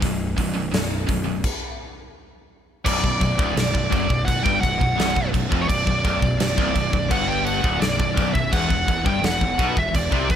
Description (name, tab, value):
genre	heavy metal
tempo	85 BPM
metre	4/4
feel	straight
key	B minor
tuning	A4 = 439 Hz
part	distorted electric guitar	riff	0.0-10.4 s	B1 to C3	-29 LUFS	left 11 dB	distortion
part	scooped high-gain guitar	riff	0.0-10.4 s	B1 to C3	-28 LUFS	right 9 dB	distortion
part	fuzz picked electric bass	bass	0.0-10.4 s	B0 to C2	-27 LUFS	equal	overdrive
part	big rock drum kit	drums	0.0-10.4 s	crash cymbal, hi-hat, kick drum, snare drum	-23 LUFS	equal	none
part	high-gain lead guitar	melody	2.9-10.4 s	C#5 to G5	-24 LUFS	equal	distortion, ping-pong delay
part	sludgy distorted guitar	riff	2.9-10.4 s	B1 to C3	-30 LUFS	left 1 dB	none
room	little or no reverb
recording	none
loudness	-19 LUFS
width	side -9 dB against mid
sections	0.0-2.9 A section; 2.9-10.4 B section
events	stop 1.4-2.9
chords	0.0 B5; 1.4 N.C.; 2.9 Bm; 8.5 E5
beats	| 0.02 0.73 1.44 2.15 | 2.85 3.56 4.27 4.98 | 5.69 6.39 7.10 7.81 | 8.52 9.22 9.93